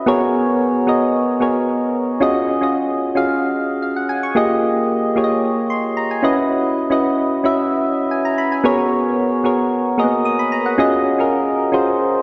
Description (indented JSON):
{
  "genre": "amapiano",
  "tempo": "112 BPM",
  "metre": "4/4",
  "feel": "straight",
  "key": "unclear",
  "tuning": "A4 = 440 Hz",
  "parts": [
    { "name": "soft electric-piano-like synth keys", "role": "solo", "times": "0.0-12.2 s", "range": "Bb3 to Eb6", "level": "-18 LUFS", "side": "equal", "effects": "chorus, analog delay" }
  ],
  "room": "wet lush hall reverb, RT60 2.4 s",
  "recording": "dreamy mix soaked in reverb",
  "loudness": "-18 LUFS",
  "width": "mono",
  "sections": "0.0-12.2 A section",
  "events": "none",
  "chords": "0.1 Abm11; 2.2 Ebm11; 4.4 Fm11; 6.2 Dbm11; 8.6 Abm11; 10.8 Ebm11"
}